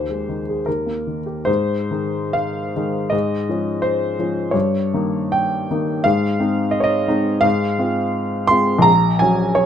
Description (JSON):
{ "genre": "classical, romantic character piece for solo piano", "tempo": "64-88 BPM", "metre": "2/4", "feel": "rubato", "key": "Ab major", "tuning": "A4 = 437 Hz", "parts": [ { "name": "warm baby grand piano", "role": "solo", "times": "0.0-9.7 s", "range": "Bb1 to C6", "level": "-17 LUFS", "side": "equal", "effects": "none" } ], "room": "light reverb", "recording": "none", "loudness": "-17 LUFS", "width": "side -9 dB against mid", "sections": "0.0-1.5 A section; 1.5-9.7 B section", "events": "none", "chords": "0.0 Ab/Eb; 0.7 Eb; 1.5 Ab; 3.1 Db/Ab; 4.5 Eb7/G; 6.1 Ab; 7.4 Fm/Ab; 8.9 Gb/Bb", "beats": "0.67 | 1.48 2.37 | 3.13 3.84 | 4.54 5.34 | 6.05 6.74 | 7.44 8.15 | 8.87 9.59" }